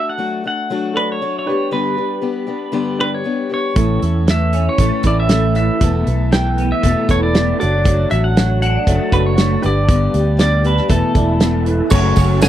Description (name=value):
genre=folk rock and heartland rock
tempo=118 BPM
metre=4/4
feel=straight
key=unclear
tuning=A4 = 440 Hz
part: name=pedal steel guitar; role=melody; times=0.0-12.5 s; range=A4 to G#5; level=-21 LUFS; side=equal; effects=none
part: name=clear upright piano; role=accompaniment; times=0.0-12.5 s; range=B3 to D5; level=-27 LUFS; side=right 3 dB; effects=none
part: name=picked acoustic archtop guitar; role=accompaniment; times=0.0-12.5 s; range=E2 to A4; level=-22 LUFS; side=left 6 dB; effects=none
part: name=electric guitar through a small old amp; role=riff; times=3.8-12.5 s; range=E2 to F#4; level=-21 LUFS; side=right 2 dB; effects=ensemble chorus
part: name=fingered electric bass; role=bass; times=3.8-12.5 s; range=E1 to E2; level=-17 LUFS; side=equal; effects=none
part: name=loose indie drum kit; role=drums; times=3.8-12.5 s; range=crash cymbal, hi-hat, kick drum, snare drum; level=-16 LUFS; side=right 1 dB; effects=none
part: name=tambourine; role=percussion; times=11.9-12.5 s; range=none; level=-30 LUFS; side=right 7 dB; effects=none
room=little or no reverb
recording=dry, close 1970s-style studio recording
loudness=-14 LUFS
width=side -12 dB against mid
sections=0.0-11.9 A section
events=none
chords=0.0 D/F#; 1.5 G; 3.8 A; 5.8 Esus4; 7.6 D/F#; 9.6 G; 10.9 Esus4; 11.9 F#m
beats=0.20 0.71 1.22 | 1.73 2.24 2.75 3.26 | 3.77 4.28 4.79 5.30 | 5.81 6.32 6.83 7.34 | 7.85 8.36 8.87 9.38 | 9.88 10.39 10.90 11.41 | 11.92 12.42